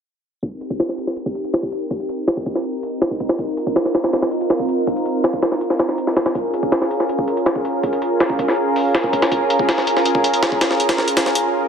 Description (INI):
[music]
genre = drum and bass, jungle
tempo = 162 BPM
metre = 4/4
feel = straight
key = C phrygian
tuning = A4 = 440 Hz
[part]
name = lush unison pad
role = sustained chords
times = 0.4-11.7 s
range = C4 to Bb4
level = -19 LUFS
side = right 1 dB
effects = chorus
[part]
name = jungle sampler-style drum kit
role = drums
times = 0.4-11.4 s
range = hi-hat, kick drum, snare drum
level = -20 LUFS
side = equal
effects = high-pass filter on kick, studio reverb, high-pass filter on hats, high-pass filter on snare
[sound]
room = wet lush hall reverb, RT60 2.1 s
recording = dense, heavily limited modern master, low-pass filter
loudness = -17 LUFS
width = side -7 dB against mid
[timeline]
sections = 0.4-11.7 A section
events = filter sweep on analog synth pad 0.4-11.7; filter sweep 0.4-11.7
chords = 0.4 Cm7; 6.4 Bbm7